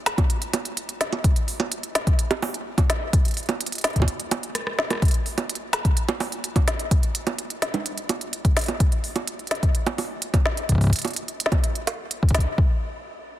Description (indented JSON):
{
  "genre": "IDM",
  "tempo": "127 BPM",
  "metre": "4/4",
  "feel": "straight",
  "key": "none",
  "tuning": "none",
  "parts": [
    { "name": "organic electronic drum kit", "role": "drums", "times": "0.1-12.5 s", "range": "bongos, hi-hat, rim click, snare drum", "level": "-25 LUFS", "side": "right 2 dB", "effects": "tape echo" },
    { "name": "electronic kick drum", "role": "drums", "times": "0.2-12.7 s", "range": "none", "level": "-20 LUFS", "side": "left 1 dB", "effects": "none" }
  ],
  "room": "little or no reverb",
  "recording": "dense, heavily limited modern master, faint mains hum",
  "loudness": "-21 LUFS",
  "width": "side -13 dB against mid",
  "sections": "0.0-5.0 A section; 5.0-12.6 B section",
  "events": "break 4.1-5.0; drum fill 4.5-5.0",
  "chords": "none"
}